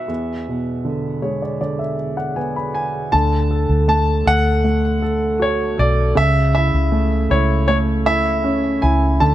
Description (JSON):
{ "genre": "pop ballad", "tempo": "79 BPM", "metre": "4/4", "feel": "straight", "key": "A major", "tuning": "A4 = 438 Hz", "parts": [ { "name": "clear baby grand piano", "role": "melody", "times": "0.0-9.3 s", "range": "C#5 to A5", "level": "-20 LUFS", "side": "equal", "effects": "none" }, { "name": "warm upright piano", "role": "accompaniment", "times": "0.0-9.3 s", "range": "E2 to B5", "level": "-20 LUFS", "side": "right 1 dB", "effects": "none" }, { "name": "vintage muted fingered electric bass", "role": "bass", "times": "3.1-9.3 s", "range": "B1 to D2", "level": "-18 LUFS", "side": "equal", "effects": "none" } ], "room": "small room ambience", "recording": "dark, warm production", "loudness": "-16 LUFS", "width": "side -13 dB against mid", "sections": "0.0-3.1 A section; 3.1-9.3 B section", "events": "upright piano fill 0.9-3.1", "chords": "0.1 E7; 3.1 D; 6.2 A/C#" }